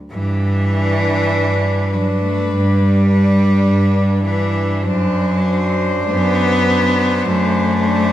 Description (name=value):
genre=classical, lyrical piece for cello ensemble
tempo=44-54 BPM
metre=4/4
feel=rubato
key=G major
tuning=A4 = 439 Hz
part: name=warm cello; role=accompaniment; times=0.1-8.1 s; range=E3 to B3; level=-17 LUFS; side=left 1 dB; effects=none
part: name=warm cello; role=bass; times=0.1-8.1 s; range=F#2 to G2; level=-18 LUFS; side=right 1 dB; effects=none
part: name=dark cello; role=melody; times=0.7-8.1 s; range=B4 to C5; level=-24 LUFS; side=left 5 dB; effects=none
part: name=rich cello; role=second line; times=0.7-8.1 s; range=D4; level=-23 LUFS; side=right 4 dB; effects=none
room=wet stone room reverb, RT60 1.3 s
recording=none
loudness=-14 LUFS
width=side -12 dB against mid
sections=0.1-8.1 A section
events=none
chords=0.1 G; 4.8 D7/F#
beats=| 0.12 1.33 2.51 3.68 | 4.84 6.12 7.25